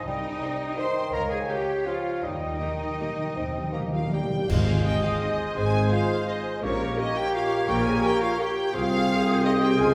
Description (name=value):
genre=classical, orchestral ballroom waltz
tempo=151-183 BPM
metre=3/4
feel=rubato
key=Ab major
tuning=A4 = 440 Hz
part: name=flute section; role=second line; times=0.0-9.9 s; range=F5 to F6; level=-39 LUFS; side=equal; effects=none
part: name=warm clarinet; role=second line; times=0.0-9.9 s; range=G4 to Eb5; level=-36 LUFS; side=equal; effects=none
part: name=warm oboe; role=second line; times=0.0-9.9 s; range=C5 to C6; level=-38 LUFS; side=equal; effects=none
part: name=warm symphonic violin section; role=second line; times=0.0-9.9 s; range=Db5 to C6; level=-39 LUFS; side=equal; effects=none
part: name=warm bassoon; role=accompaniment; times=0.0-9.9 s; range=Eb3 to C4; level=-35 LUFS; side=equal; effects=none
part: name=dark French horn section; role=sustained chords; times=0.0-9.9 s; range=Db4 to C5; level=-33 LUFS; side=equal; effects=none
part: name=clear symphonic cello section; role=bass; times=0.0-9.9 s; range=Ab2 to C5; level=-35 LUFS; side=equal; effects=none
part: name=rich symphonic double bass section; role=bass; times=0.1-9.9 s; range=Ab1 to Eb2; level=-35 LUFS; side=equal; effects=none
part: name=rich symphonic violin section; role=melody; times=0.4-9.9 s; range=Db5 to Bb5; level=-36 LUFS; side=equal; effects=none
part: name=rich symphonic viola section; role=accompaniment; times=0.4-9.9 s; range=Bb3 to Eb5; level=-36 LUFS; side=equal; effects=none
part: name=timpani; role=percussion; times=2.2-5.0 s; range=Ab2 to Eb3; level=-34 LUFS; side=equal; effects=none
part: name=mellow tuba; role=bass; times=4.5-9.9 s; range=Ab1 to Db2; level=-31 LUFS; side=equal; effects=none
part: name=clash cymbals and concert bass drum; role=percussion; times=4.5-5.2 s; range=none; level=-32 LUFS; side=equal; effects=none
room=wet recital hall reverb, RT60 1.6 s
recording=recorded in a church or concert hall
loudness=-25 LUFS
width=mono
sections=0.0-4.5 A section; 4.5-9.9 B section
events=timpani fill 2.2-4.5; band accent 4.5-4.8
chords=0.1 Cm; 1.1 Db; 2.2 Eb; 4.5 Ab; 6.6 Gdim/Bb; 8.7 Ab/C